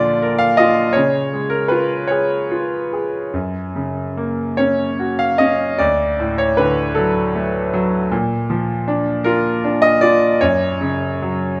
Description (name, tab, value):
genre	classical, lyrical solo piano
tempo	48-55 BPM (dotted quarters)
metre	6/8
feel	rubato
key	F# major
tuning	A4 = 439 Hz
part	bright grand piano	solo	0.0-11.6 s	D2 to E#5	-18 LUFS	equal	none
room	moderate concert hall reverb, RT60 2.4 s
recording	none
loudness	-18 LUFS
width	mono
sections	0.0-11.6 A section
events	none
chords	0.0 A#; 1.0 C#; 3.3 F#; 5.8 D; 8.1 A#; 10.4 F#5